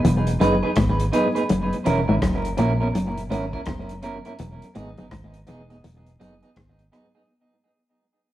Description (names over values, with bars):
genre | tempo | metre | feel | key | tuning
roots reggae | 83 BPM | 4/4 | swing 63% on 16ths | unclear | A4 = 440 Hz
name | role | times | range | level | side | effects
semi-hollow electric guitar | riff | 0.0-6.8 s | E2 to A#2 | -25 LUFS | left 1 dB | warbly pitch drift, tape echo
fingered electric bass | bass | 0.0-6.9 s | E1 to A#1 | -25 LUFS | equal | none
damped 70s drum kit | drums | 0.0-7.1 s | hi-hat, kick drum, rim click | -31 LUFS | equal | none
congas | percussion | 0.1-7.3 s | none | -30 LUFS | equal | none
clean electric guitar | accompaniment | 0.4-7.2 s | B3 to B4 | -25 LUFS | right 2 dB | warbly pitch drift, tape echo
room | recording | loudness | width
moderate stone room reverb, RT60 1.1 s | rough rehearsal-room recording, tube saturation, vinyl crackle | -19 LUFS | side -13 dB against mid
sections
0.0-7.3 A section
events
fade-out 0.0-7.3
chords
0.0 Emaj7; 1.5 F#7; 4.4 Emaj7